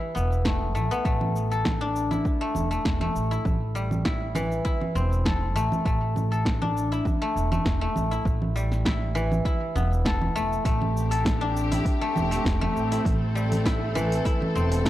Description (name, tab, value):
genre	organic downtempo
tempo	100 BPM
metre	4/4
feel	swing 53% on 16ths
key	A minor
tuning	A4 = 439 Hz
part	guzheng	arpeggios	0.0-14.9 s	E3 to A4	-28 LUFS	left 2 dB	tape echo
part	upright bass	bass	0.2-14.9 s	E1 to A1	-27 LUFS	equal	transformer saturation, sidechain pumping
part	deep house drum kit	drums	0.2-14.9 s	cabasa, congas, hi-hat, snare drum	-30 LUFS	right 1 dB	overdrive
part	electronic kick drum	drums	0.5-14.9 s	none	-27 LUFS	equal	overdrive
part	clear symphonic string section	sustained chords	10.6-14.9 s	A3 to A4	-31 LUFS	equal	sidechain pumping
room	studio reverb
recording	dry, gritty hardware recording, transformer saturation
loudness	-23 LUFS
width	side -14 dB against mid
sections	0.0-10.7 A section; 10.7-14.9 B section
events	none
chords	0.0 G; 1.1 Am7